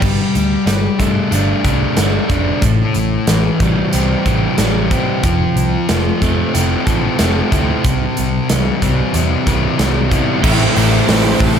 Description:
rock, shoegaze and dream pop; 92 BPM; 4/4; straight; A4 = 440 Hz
crunchy overdriven guitar; riff; 0.0-11.6 s; A2 to E4; -20 LUFS; right 11 dB; reverse reverb
thick fuzz guitar; riff; 0.0-11.6 s; A2 to B4; -18 LUFS; left 9 dB; distortion, wide subtle chorus
vintage muted picked electric bass; bass; 0.0-11.6 s; F1 to G2; -18 LUFS; equal
big rock drum kit; drums; 0.0-11.6 s; crash cymbal, hi-hat, kick drum, snare drum; -18 LUFS; equal
string machine, violins; sustained chords; 10.4-11.6 s; G4 to A5; -25 LUFS; equal
crunchy overdriven guitar; riff; 10.4-11.6 s; A2 to E4; -19 LUFS; equal
light reverb, small room ambience; -12 LUFS; side -8 dB against mid
0.0-10.4 A section; 10.4-11.6 A section
0.0 Gsus2; 2.6 Am7; 5.2 Fmaj7; 7.8 Cmaj7; 10.4 Am7

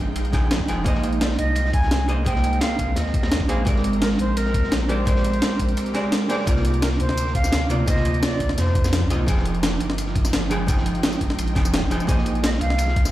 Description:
liquid drum and bass; 171 BPM; 4/4; straight; A4 = 436 Hz
archtop guitar, miked and amplified; accompaniment; 0.0-13.1 s; C3 to G5; -26 LUFS; right 1 dB; tape echo
shimmering ambient pad; sustained chords; 0.0-13.1 s; F3 to D6; -31 LUFS; right 1 dB; chorus, built-in reverb, sidechain pumping
sub bass with octave; bass; 0.0-13.1 s; F1 to F2; -24 LUFS; equal
breakbeat sampler-style drum kit; drums; 0.2-13.1 s; hi-hat, snare drum, tambourine; -26 LUFS; equal
crunchy breakbeat drum kit; drums; 0.2-13.1 s; ride cymbal, snare drum; -33 LUFS; equal; high-pass filter on cymbals, high-pass filter on snare, high-pass filter on room
electronic kick drum; drums; 0.3-13.0 s; -23 LUFS; equal
reedy concert flute; melody; 1.2-9.1, 12.4-13.1 s; Bb4 to Ab5; -28 LUFS; right 1 dB; tape echo
light reverb, small room ambience; played on a big sound system in a bare room, large studio reverb; -19 LUFS; side -14 dB against mid
0.0-13.1 A section
0.0 Fm9; 0.9 Bb9sus4; 3.7 Abmaj9#11; 6.5 Cm11; 9.3 Fm9; 12.1 Bb9sus4

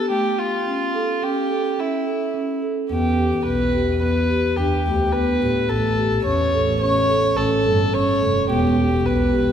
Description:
contemporary instrumental, chamber music in an uneven meter; 107 BPM; 5/4; straight; A4 = 438 Hz
warm violin; melody; 0.0-9.5 s; E4 to C#5; -22 LUFS; left 1 dB
marimba with soft mallets; arpeggios; 0.0-9.5 s; A3 to A4; -22 LUFS; right 1 dB
dark double bass; bass; 2.9-9.5 s; E1 to A2; -23 LUFS; equal
wet concert hall reverb, RT60 2.4 s; recorded in a church or concert hall; -18 LUFS; side -8 dB against mid
0.0-9.5 A section
0.1 A7; 2.9 Em7; 5.7 A7; 8.5 Em

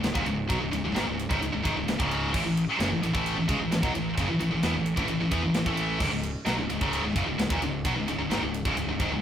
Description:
heavy metal; 131 BPM; 4/4; straight; C# minor; A4 = 440 Hz
heavy high-gain guitar; riff; 0.0-9.2 s; C#2 to B3; -26 LUFS; equal; distortion
fuzz fingered electric bass; bass; 0.0-9.2 s; C#1 to E2; -32 LUFS; equal; overdrive
tight metal drum kit; drums; 0.0-9.1 s; crash cymbal, kick drum, ride cymbal, snare drum; -31 LUFS; equal
light reverb; rough rehearsal-room recording, warm saturation; -25 LUFS; side -9 dB against mid
0.0-9.2 A section
0.0 C#5; 2.3 A5; 6.0 C#5

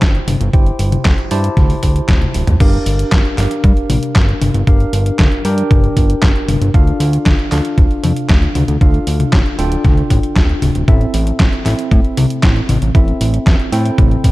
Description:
italo disco; 116 BPM; 4/4; straight; G dorian; A4 = 440 Hz
tine electric piano; stabs; 0.0-14.3 s; C4 to A5; -20 LUFS; equal; medium stereo tremolo
fat analog bass; bass; 0.0-14.3 s; D1 to A2; -16 LUFS; equal
detuned 8-bit digital drum machine; drums; 0.0-14.3 s; crash cymbal, handclaps, hi-hat, snare drum, toms; -19 LUFS; left 1 dB
electronic kick drum; drums; 0.0-14.3 s; -12 LUFS; equal
light reverb, digital ambience; dark, warm production; -11 LUFS; side -18 dB against mid
0.0-2.6 A section; 2.6-14.3 B section
drum fill 2.1-2.6
0.0 C/G; 2.6 Gm7; 6.7 Dm; 10.9 Am

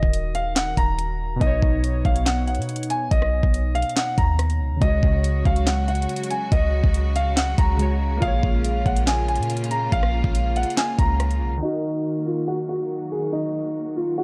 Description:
hip hop, trap; 141 BPM; 4/4; half-time; Eb minor; A4 = 440 Hz
dark grand piano; melody; 0.0-14.2 s; Eb4 to Bb5; -28 LUFS; equal; low-pass filter
warbly lo-fi synth keys; accompaniment; 0.0-14.2 s; B2 to C#5; -32 LUFS; equal; chorus, low-pass filter
clean 808-style bass; bass; 0.0-11.6 s; Eb1 to B2; -25 LUFS; equal
trap drum kit; drums; 0.0-11.4 s; handclaps, hi-hat, kick drum, rim click, snare drum; -26 LUFS; equal; overdrive, vintage 12-bit sampler grit
clear symphonic string section; sustained chords; 4.8-14.2 s; Db3 to Gb4; -35 LUFS; equal
little or no reverb; dark, warm production, low-pass filter; -22 LUFS; mono
0.0-11.6 A section; 11.6-14.2 B section
filter sweep 11.6-14.2
0.0 Ebm; 1.4 Badd9; 4.8 Dbsus4; 8.2 Bbm7; 11.6 Ebm

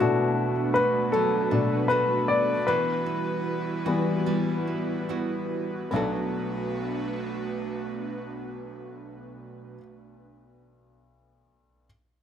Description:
pop ballad; 70-80 BPM; 4/4; straight; B minor; A4 = 440 Hz
clear baby grand piano; accompaniment; 0.0-11.9 s; B1 to D5; -25 LUFS; left 2 dB
airy breathy pad; sustained chords; 0.2-9.8 s; G3 to B4; -31 LUFS; right 2 dB; chorus
nylon-string guitar; arpeggios; 0.0-9.8 s; B2 to F#4; -34 LUFS; right 6 dB
light reverb, small room reverb; -24 LUFS; side -9 dB against mid
0.0-5.9 A section; 5.9-9.3 B section
slowing down 0.0-5.9; grand piano solo 0.0-5.9
0.0 Bm7; 2.7 Emadd9; 5.9 Bm7

